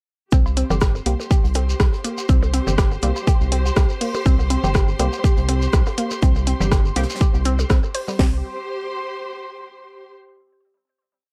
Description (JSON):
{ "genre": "minimal techno", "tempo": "122 BPM", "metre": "4/4", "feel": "swing 55% on 16ths", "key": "unclear", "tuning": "A4 = 440 Hz", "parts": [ { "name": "hollow square pluck", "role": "riff", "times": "0.3-8.4 s", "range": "G3 to C5", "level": "-30 LUFS", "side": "equal", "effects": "chorus, phaser, sidechain pumping, tape echo" }, { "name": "rubbery square bass", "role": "bass", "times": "0.3-8.4 s", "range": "G1 to C2", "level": "-23 LUFS", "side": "equal", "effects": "sidechain pumping" }, { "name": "house drum kit", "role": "drums", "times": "0.3-8.3 s", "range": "hi-hat, kick drum, snare drum", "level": "-19 LUFS", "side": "equal", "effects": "none" }, { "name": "jazz brush drum kit", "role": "drums", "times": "0.3-8.1 s", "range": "hi-hat, shaker, snare drum", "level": "-41 LUFS", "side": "equal", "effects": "high-pass filter on hats, high-pass filter on snare, high-pass filter on perc, high-pass filter on room" }, { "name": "percussion blips, woodblock and cowbell", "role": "percussion", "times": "0.3-8.2 s", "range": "none", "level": "-33 LUFS", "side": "equal", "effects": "digital delay" }, { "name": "shekere", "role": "percussion", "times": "0.3-8.2 s", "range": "none", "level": "-38 LUFS", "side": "equal", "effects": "none" }, { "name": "warm studio string section", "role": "texture", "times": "0.3-10.1 s", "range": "G4 to C6", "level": "-32 LUFS", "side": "equal", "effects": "sidechain pumping" }, { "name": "punchy analog drum machine", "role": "drums", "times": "0.6-8.1 s", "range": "hi-hat, rim click", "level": "-28 LUFS", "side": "equal", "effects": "none" }, { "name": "filtered dub chord stab", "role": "stabs", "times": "0.7-8.4 s", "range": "G3 to G4", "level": "-31 LUFS", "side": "equal", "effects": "phaser, analog chorus, cassette tape, digital delay" } ], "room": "little or no reverb", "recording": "dark, warm production", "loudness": "-19 LUFS", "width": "mono", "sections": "0.3-8.2 drop; 8.2-10.2 final chord", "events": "drop 0.3-8.2", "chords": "0.3 C5" }